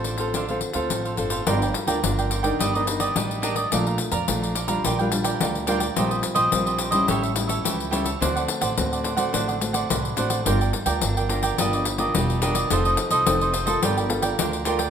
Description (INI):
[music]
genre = samba and choro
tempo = 107 BPM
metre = 4/4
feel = straight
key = G minor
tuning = A4 = 440 Hz
[part]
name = cavaquinho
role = accompaniment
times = 0.0-14.9 s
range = D4 to Bb5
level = -25 LUFS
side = right 4 dB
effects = none
[part]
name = nylon-string guitar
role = accompaniment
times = 0.0-14.9 s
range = A2 to Bb4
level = -27 LUFS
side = left 2 dB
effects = none
[part]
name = upright bass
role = bass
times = 0.0-14.9 s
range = E1 to F2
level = -28 LUFS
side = equal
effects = none
[part]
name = pandeiro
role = percussion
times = 0.0-14.9 s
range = none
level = -27 LUFS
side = left 5 dB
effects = none
[sound]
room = moderate large studio reverb, RT60 1.2 s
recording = minimal, uncompressed stereo recording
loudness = -20 LUFS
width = side -8 dB against mid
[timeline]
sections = 0.0-1.5 A section; 1.5-14.9 B section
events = none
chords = 0.0 Dm7; 1.5 Gm7; 2.6 Ebmaj7/G; 3.7 Bbmaj7; 4.8 Gm7/Bb; 6.0 Eb69/Bb; 7.1 A7; 8.2 D7; 10.5 Gm7; 11.6 Ebmaj9/G; 12.7 F7; 13.8 Gm9